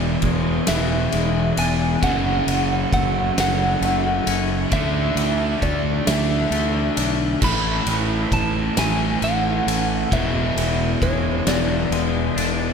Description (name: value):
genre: post-rock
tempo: 44 BPM (dotted quarters)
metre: 6/8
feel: straight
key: unclear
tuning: A4 = 439 Hz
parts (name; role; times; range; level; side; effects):
- electric slide guitar; melody; 0.0-12.7 s; C#5 to B5; -25 LUFS; right 2 dB; slapback echo
- evolving wavetable pad; sustained chords; 0.5-12.7 s; E3 to D5; -36 LUFS; equal; none
- twangy electric guitar; arpeggios; 0.0-12.7 s; E2 to D4; -31 LUFS; left 1 dB; wide subtle chorus, slapback echo
- distorted electric guitar; riff; 0.0-12.7 s; E2 to D4; -26 LUFS; right 11 dB; distortion, slapback echo
- overdriven semi-hollow guitar; riff; 0.0-12.7 s; E2 to D4; -25 LUFS; left 9 dB; slapback echo
- fuzz fingered electric bass; bass; 0.0-12.7 s; E1 to D2; -24 LUFS; equal; overdrive
- oversized low-tuned drum kit; drums; 0.2-12.6 s; crash cymbal, kick drum, ride cymbal, snare drum; -25 LUFS; left 1 dB; none
room: moderate lush hall reverb, RT60 2.7 s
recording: big arena sound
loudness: -18 LUFS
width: side -6 dB against mid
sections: 0.0-12.7 A section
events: none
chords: 0.0 E7; 2.0 F#m; 4.7 Dadd9; 7.4 A; 10.1 E7